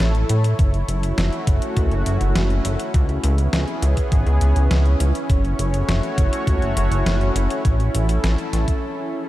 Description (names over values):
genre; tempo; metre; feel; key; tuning
synthwave; 102 BPM; 4/4; straight; F# minor; A4 = 440 Hz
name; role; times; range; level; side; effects
lush unison pad; sustained chords; 0.0-9.3 s; A3 to C#5; -24 LUFS; equal; chorus, sidechain pumping
chorused synth bass; bass; 0.0-8.7 s; F#1 to A2; -19 LUFS; equal; sidechain pumping
clean 12-bit digital drum machine; drums; 0.0-8.8 s; hi-hat, snare drum; -28 LUFS; equal; overdrive
electronic kick drum; drums; 0.6-8.8 s; none; -19 LUFS; equal; overdrive
room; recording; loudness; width
light reverb, digital ambience; none; -17 LUFS; side -15 dB against mid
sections
0.0-9.3 A section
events
break 8.8-9.3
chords
0.0 A; 0.6 F#m7; 2.9 C#m7; 5.3 F#m7; 7.7 A